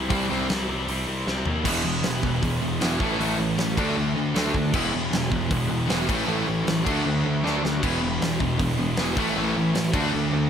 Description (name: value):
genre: punk rock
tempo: 156 BPM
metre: 4/4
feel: straight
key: unclear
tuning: A4 = 440 Hz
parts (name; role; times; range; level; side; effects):
- high-gain distorted guitar; riff; 0.0-10.5 s; A2 to F#4; -29 LUFS; left 2 dB; distortion
- fuzz picked electric bass; bass; 0.0-10.5 s; E1 to D#2; -29 LUFS; equal; overdrive
- cranked stack guitar; riff; 0.1-10.5 s; E2 to D4; -28 LUFS; left 8 dB; overdrive
- sludgy distorted guitar; riff; 0.1-10.5 s; E2 to D4; -27 LUFS; right 7 dB; overdrive
- big rock drum kit; drums; 0.1-10.0 s; crash cymbal, hi-hat, kick drum, snare drum, toms; -28 LUFS; equal; none
room: moderate studio reverb, RT60 0.6 s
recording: none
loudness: -22 LUFS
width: side -8 dB against mid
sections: 0.0-1.6 A section; 1.6-10.5 B section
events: drum fill 1.3-1.6, 7.4-7.8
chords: 0.0 C; 1.6 E; 3.0 A; 3.8 D; 4.7 E; 6.1 A; 6.9 D; 7.8 E; 9.2 A; 9.9 D